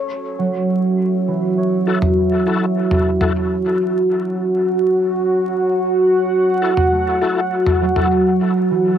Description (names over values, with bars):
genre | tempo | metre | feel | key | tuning
ambient dub | 101 BPM | 4/4 | straight | F# minor | A4 = 440 Hz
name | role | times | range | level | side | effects
deep dark ambient pad | sustained chords | 0.0-9.0 s | F#4 to F#5 | -16 LUFS | equal | chorus, built-in reverb, cassette tape
concert harp | arpeggios | 0.4-9.0 s | E3 to C#5 | -21 LUFS | right 4 dB | low-pass filter, cassette tape, analog delay
overdriven tonewheel organ | stabs | 1.9-8.1 s | E4 to A4 | -25 LUFS | left 5 dB | chorus vibrato, fast rotary speaker, vintage 12-bit sampler grit, low-pass filter, cassette tape, dub echo
electronic toms | drums | 2.0-8.1 s | none | -21 LUFS | equal | small room ambience, cassette tape
room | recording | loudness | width
light reverb | home recording on cassette, vinyl crackle | -15 LUFS | side -9 dB against mid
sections
0.0-9.0 A section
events
none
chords
0.0 F#m7